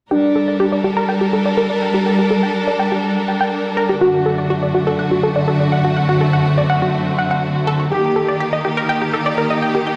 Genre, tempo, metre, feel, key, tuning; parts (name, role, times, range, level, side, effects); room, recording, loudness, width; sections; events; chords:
techno; 123 BPM; 4/4; straight; G harmonic minor; A4 = 440 Hz
expressive portamento lead; melody; 0.1-0.6, 4.0-4.5, 7.9-8.4 s; D4 to G4; -22 LUFS; equal; analog chorus, delay
rich studio string section; sustained chords; 0.1-10.0 s; F#2 to Bb4; -19 LUFS; equal
unison pluck; arpeggios; 0.1-9.9 s; F#4 to G5; -22 LUFS; equal; delay
wet concert hall reverb, RT60 1.9 s; played on a big sound system in a bare room, stone room reverb; -17 LUFS; mono
0.1-10.0 A section
filter sweep on synth arpeggio sound 0.1-10.0
0.1 Gm; 4.0 D/F#; 7.9 Eb